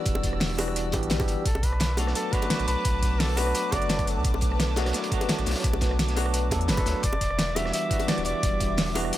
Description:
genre	liquid drum and bass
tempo	172 BPM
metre	4/4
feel	swing 53% on 16ths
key	E minor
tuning	A4 = 442 Hz
part	bell-like tine electric piano	accompaniment	0.0-9.2 s	E3 to A4	-31 LUFS	equal	medium stereo tremolo
part	airy breathy pad	sustained chords	0.0-9.2 s	G3 to E6	-34 LUFS	equal	chorus, phaser
part	warm sub bass	bass	0.1-9.1 s	D1 to E2	-28 LUFS	equal	none
part	crunchy breakbeat drum kit	drums	0.1-9.2 s	hi-hat, snare drum	-35 LUFS	equal	high-pass filter on hats, high-pass filter on snare, high-pass filter on room
part	electronic kick drum	drums	0.1-8.7 s	none	-28 LUFS	equal	none
part	pop drum kit	drums	0.1-9.2 s	hi-hat, rim click, snare drum	-29 LUFS	equal	none
part	bongos	percussion	0.2-9.0 s	none	-33 LUFS	right 1 dB	none
part	clear flugelhorn	melody	1.5-4.1, 6.7-8.9 s	A4 to E5	-32 LUFS	equal	tape echo
room	studio reverb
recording	none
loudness	-23 LUFS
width	side -14 dB against mid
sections	0.0-9.2 A section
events	none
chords	0.0 Em7; 1.5 Bm7; 7.0 Em7

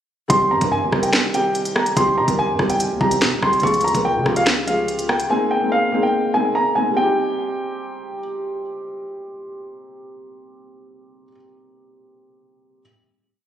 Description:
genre	hip hop, drill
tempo	144 BPM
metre	4/4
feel	half-time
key	C phrygian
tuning	A4 = 441 Hz
part	dark concert grand piano	melody	0.3-8.2 s	F5 to Db6	-20 LUFS	equal	low-pass filter, digital delay
part	felt-muted upright piano	accompaniment	0.3-12.8 s	Eb3 to Bb4	-22 LUFS	equal	low-pass filter
part	distorted 808-style bass	bass	0.3-5.3 s	C2 to Db3	-27 LUFS	right 1 dB	distortion
part	drill drum kit	drums	0.3-5.3 s	finger snaps, hi-hat, kick drum, rim click, snare drum	-21 LUFS	equal	none
room	light reverb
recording	recorded on a phone in the room, studio reverb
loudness	-17 LUFS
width	side -10 dB against mid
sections	0.3-7.0 hook; 7.0-10.3 final chord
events	none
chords	0.3 Cm; 3.6 Db; 5.3 Abadd9; 7.0 Cm

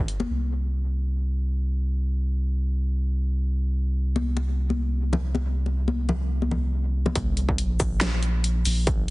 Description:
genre	deep dubstep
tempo	140 BPM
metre	4/4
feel	swing 54% on 16ths, half-time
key	unclear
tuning	A4 = 440 Hz
part	soft dub sub bass	bass	0.0-9.1 s	Bb1 to C2	-24 LUFS	equal	none
part	dubstep drum kit	drums	0.1-0.2, 7.2-9.1 s	hi-hat, shaker, snare drum	-28 LUFS	equal	low-pass filter on snare, low-pass filter on hats, low-pass filter on perc
part	congas	percussion	0.2-0.3, 4.2-7.1 s	none	-29 LUFS	left 3 dB	dub echo
part	electronic kick drum	drums	7.2-9.0 s	none	-26 LUFS	equal	distortion
room	digital ambience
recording	heavily compressed radio sound, multiband compression, nothing above 10.4 kHz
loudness	-23 LUFS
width	side -21 dB against mid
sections	0.3-7.2 A section; 7.2-9.1 B section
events	drop 7.2-9.1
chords	none

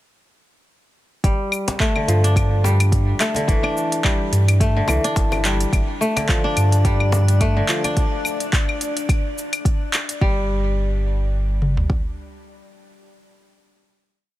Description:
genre	organic downtempo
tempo	107 BPM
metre	4/4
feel	swing 56% on 16ths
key	unclear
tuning	A4 = 440 Hz
part	kora	arpeggios	1.2-12.4 s	D3 to D4	-23 LUFS	left 1 dB	low-pass filter, digital delay
part	warm sub bass	bass	1.2-11.9 s	G1 to G2	-18 LUFS	equal	sidechain pumping
part	afro-pop drum kit	drums	1.2-12.0 s	kick drum, toms	-20 LUFS	equal	overdrive
part	deep house drum kit	drums	1.2-10.2 s	claves, handclaps, hi-hat, shaker	-25 LUFS	left 1 dB	none
part	cajon	percussion	1.7-7.9 s	none	-29 LUFS	left 3 dB	none
part	drifting glass-harmonics texture	texture	6.4-10.2 s	D4 to D5	-31 LUFS	left 5 dB	chorus, built-in reverb
room	digital ambience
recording	dense, heavily limited modern master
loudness	-17 LUFS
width	side -15 dB against mid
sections	1.2-10.2 groove; 10.2-12.5 final note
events	none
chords	1.2 G5; 3.5 A7(no3)/G; 5.7 G5; 8.0 N.C.

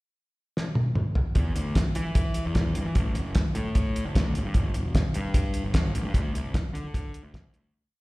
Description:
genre	indie rock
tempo	150 BPM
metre	4/4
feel	straight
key	unclear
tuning	A4 = 441 Hz
part	cloth-damped thuddy drum kit	drums	0.6-7.6 s	hi-hat, kick drum, snare drum, toms	-24 LUFS	equal	none
part	fuzz picked electric bass	bass	1.4-7.7 s	E1 to E3	-29 LUFS	equal	overdrive
room	light reverb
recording	live gig heard through the venue's PA, recital hall reverb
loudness	-24 LUFS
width	side -22 dB against mid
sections	0.0-1.4 pickup bar; 1.4-7.7 pre-chorus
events	drum fill 0.6-1.4; fade-out 6.2-7.7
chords	none

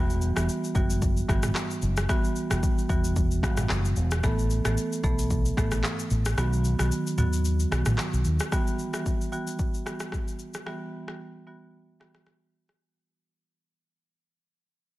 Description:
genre	afrobeats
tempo	112 BPM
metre	4/4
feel	swing 55% on 16ths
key	E minor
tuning	A4 = 440 Hz
part	marimba with medium mallets	accompaniment	0.0-12.2 s	D#3 to A4	-30 LUFS	right 2 dB	none
part	fingered electric bass	bass	0.0-8.4 s	E1 to D#2	-26 LUFS	equal	none
part	afro-pop drum kit	drums	0.1-12.8 s	handclaps, kick drum, rim click, shaker, toms	-28 LUFS	equal	none
room	digital ambience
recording	dense, heavily limited modern master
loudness	-24 LUFS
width	side -17 dB against mid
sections	0.0-8.5 A section; 8.5-12.8 B section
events	kick muted 6.4-8.5; fade-out 8.5-12.8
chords	0.0 Emadd9; 4.2 Asus2; 6.4 B; 8.5 Emadd9

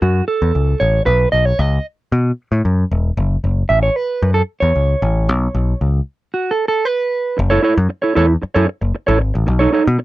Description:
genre	disco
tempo	114 BPM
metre	4/4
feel	straight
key	F# dorian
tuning	A4 = 439 Hz
part	mellow electric guitar	accompaniment	0.0-10.0 s	D#4 to E5	-16 LUFS	right 3 dB	none
part	picked electric bass	bass	0.0-10.0 s	E1 to B2	-15 LUFS	left 1 dB	none
room	little or no reverb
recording	dry, close 1970s-style studio recording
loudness	-14 LUFS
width	side -16 dB against mid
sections	0.0-7.4 A section; 7.4-10.0 B section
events	clean electric guitar solo 0.0-7.4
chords	0.0 F#m; 1.1 Bsus2; 3.2 F#m; 5.3 Bsus2; 7.4 F#m7; 9.5 B9

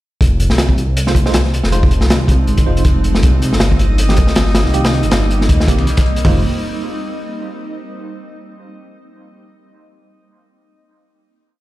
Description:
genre	drum and bass, jungle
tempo	159 BPM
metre	4/4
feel	swing 55% on 16ths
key	F minor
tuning	A4 = 439 Hz
part	granular cloud pad	sustained chords	1.6-6.4 s	F3 to Eb4	-24 LUFS	right 1 dB	built-in reverb
part	dark detuned saw bass	bass	0.2-6.4 s	F1 to Eb2	-15 LUFS	equal	tube saturation
part	crunchy breakbeat drum kit	drums	0.2-6.3 s	hi-hat, kick drum, snare drum, toms	-14 LUFS	equal	none
part	tine electric piano	stabs	1.1-6.4 s	Eb3 to C5	-24 LUFS	right 3 dB	fast stereo tremolo, dub echo
part	dusty soul sampler-style drum kit	drums	3.2-6.2 s	hi-hat, snare drum	-32 LUFS	left 4 dB	none
part	drifting glass-harmonics texture	texture	3.5-6.3 s	Eb5 to Eb6	-30 LUFS	left 3 dB	chorus, built-in reverb
room	small room ambience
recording	played on a big sound system in a bare room, large studio reverb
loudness	-11 LUFS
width	side -16 dB against mid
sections	0.2-6.2 drop; 6.2-7.8 final chord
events	drop 0.2-6.2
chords	0.2 Fm7; 3.2 Cm7; 6.2 Fm7

